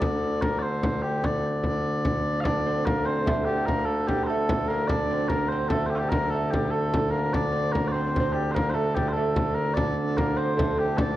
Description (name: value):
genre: medieval dance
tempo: 98 BPM (dotted quarters)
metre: 6/8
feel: straight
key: unclear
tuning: A4 = 440 Hz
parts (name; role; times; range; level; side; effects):
- mellow small bagpipes; melody; 0.0-11.2 s; D2 to F5; -25 LUFS; equal; none
- frame drum; percussion; 0.0-11.2 s; none; -29 LUFS; equal; none
- lute; second line; 2.5-11.2 s; G3 to D4; -30 LUFS; right 4 dB; none
room: wet scoring stage reverb, RT60 1.7 s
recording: worn, warbling old tape, cassette tape, warbly pitch drift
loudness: -23 LUFS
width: side -14 dB against mid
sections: 0.0-2.5 A section; 2.5-11.2 A section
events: none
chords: none